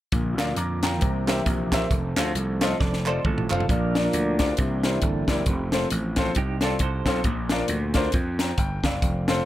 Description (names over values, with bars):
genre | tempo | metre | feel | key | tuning
uptempo gospel | 135 BPM | 4/4 | swing 58% on 8ths | Bb major | A4 = 441 Hz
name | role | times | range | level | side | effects
clear grand piano | accompaniment | 0.1-9.4 s | Bb2 to D6 | -28 LUFS | left 2 dB | dub echo
mellow tonewheel organ | sustained chords | 0.1-9.3 s | D3 to F5 | -30 LUFS | right 2 dB | slow rotary speaker
gritty slap bass | bass | 0.1-9.4 s | F1 to F2 | -27 LUFS | equal | overdrive
tight funk drum kit | drums | 0.1-9.4 s | hi-hat, kick drum, snare drum, toms | -25 LUFS | equal | none
group handclap | percussion | 0.4-3.6 s | none | -33 LUFS | right 4 dB | none
clean electric guitar | second line | 2.8-3.7, 6.4-7.2 s | Eb4 to D5 | -35 LUFS | right 7 dB | tremolo, dub echo
room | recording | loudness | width
light reverb | echo-heavy mix | -22 LUFS | side -14 dB against mid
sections
0.1-3.7 A section; 3.7-9.5 B section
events
drum fill 2.8-3.7; tonewheel organ solo 3.7-9.5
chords
0.1 Bb; 1.0 C7; 1.9 F; 3.7 Bb; 4.6 C7; 5.5 F; 7.2 Bb